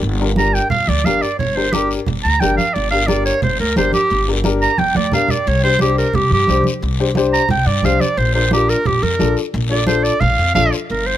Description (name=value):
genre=latin, cumbia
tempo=177 BPM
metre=4/4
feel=straight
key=G minor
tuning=A4 = 439 Hz
part: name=upright bass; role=bass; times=0.0-11.2 s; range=G1 to G2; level=-19 LUFS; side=equal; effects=none
part: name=congas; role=percussion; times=0.0-11.2 s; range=none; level=-22 LUFS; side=right 3 dB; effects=none
part: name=guiro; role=percussion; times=0.0-11.2 s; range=none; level=-28 LUFS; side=left 6 dB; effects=none
part: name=dark upright piano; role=accompaniment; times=0.2-10.7 s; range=D4 to C5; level=-21 LUFS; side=left 5 dB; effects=none
part: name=clear clarinet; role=melody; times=0.4-11.2 s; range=G4 to Bb5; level=-17 LUFS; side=right 2 dB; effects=none
room=light reverb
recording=none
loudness=-14 LUFS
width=side -12 dB against mid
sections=0.0-10.9 A section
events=clarinet solo 0.0-10.9; drum fill 4.8-5.5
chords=0.0 Gm; 5.5 Csus2; 8.2 Bb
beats=| 0.04 0.38 0.72 1.06 | 1.40 1.74 2.08 2.42 | 2.75 3.09 3.43 3.77 | 4.11 4.45 4.79 5.13 | 5.47 5.81 6.15 6.49 | 6.83 7.16 7.50 7.84 | 8.18 8.52 8.86 9.20 | 9.54 9.88 10.22 10.56 | 10.90